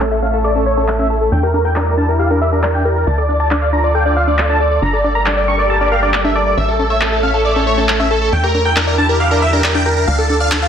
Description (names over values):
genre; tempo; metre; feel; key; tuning
uplifting trance; 137 BPM; 4/4; straight; D harmonic minor; A4 = 440 Hz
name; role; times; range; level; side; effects
big supersaw lead; melody; 0.0-10.7 s; A4 to C#6; -16 LUFS; equal; low-pass filter, ping-pong delay
lush unison pad; sustained chords; 0.0-10.7 s; G3 to E5; -22 LUFS; right 1 dB; chorus, phaser
tight sequenced synth; arpeggios; 0.0-10.7 s; C#4 to F5; -21 LUFS; left 3 dB; chorus, ping-pong delay
tight sequencer bass; bass; 0.0-10.7 s; G1 to E2; -18 LUFS; equal; none
electronic handclaps; drums; 0.0-10.6 s; none; -20 LUFS; equal; none
riser; sound effects; 10.4-10.7 s; none; -39 LUFS; right 3 dB; none
room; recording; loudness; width
moderate digital room reverb, RT60 1.2 s, digital ambience; dense, heavily limited modern master, low-pass filter; -12 LUFS; side -8 dB against mid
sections
0.0-10.7 A section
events
filter sweep on supersaw synth 0.0-10.7; filter sweep on synth arpeggio sound 0.0-10.7; filter sweep 0.0-10.7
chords
0.0 A; 1.3 Em7b5; 3.1 Dm; 4.8 Gmadd9; 6.6 A; 8.3 Em7b5; 10.1 Dm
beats
0.01 0.44 0.88 | 1.32 1.76 2.19 2.63 | 3.07 3.51 3.95 4.38 | 4.82 5.26 5.70 6.14 | 6.57 7.01 7.45 7.89 | 8.33 8.76 9.20 9.64 | 10.08 10.52